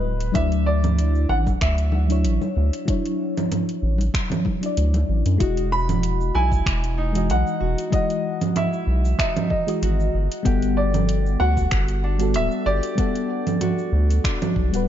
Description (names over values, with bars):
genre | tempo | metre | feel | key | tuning
sunset chillout | 95 BPM | 4/4 | swing 54% on 16ths | unclear | A4 = 439 Hz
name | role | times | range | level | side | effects
warm baby grand piano | melody | 0.0-14.5 s | B4 to B5 | -27 LUFS | right 1 dB | tape echo
mellow FM electric piano | accompaniment | 0.0-14.9 s | E3 to F#5 | -26 LUFS | moving between left 7 dB and right 2 dB | chorus, phaser, auto-pan
round analog bass | bass | 0.0-14.9 s | D1 to F#2 | -20 LUFS | equal | none
deep house drum kit | drums | 0.2-14.8 s | congas, finger snaps, hi-hat, shaker | -26 LUFS | right 4 dB | overdrive
electronic kick drum | drums | 0.3-14.7 s | none | -24 LUFS | equal | overdrive
congas | percussion | 0.3-5.1 s | none | -32 LUFS | left 4 dB | none
Celtic harp | arpeggios | 5.4-14.9 s | D4 to G4 | -31 LUFS | equal | ping-pong delay
room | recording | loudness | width
light reverb, digital ambience | dark, warm production, nothing above 7.5 kHz | -19 LUFS | side -10 dB against mid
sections
0.0-5.4 A section; 5.4-14.9 B section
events
none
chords
0.0 Dmaj9; 5.4 Emaj9; 10.1 Gmaj9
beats
| 0.35 0.98 1.61 2.24 | 2.87 3.51 4.14 4.77 | 5.40 6.03 6.66 7.29 | 7.93 8.56 9.19 9.82 | 10.45 11.09 11.72 12.35 | 12.98 13.61 14.24 14.87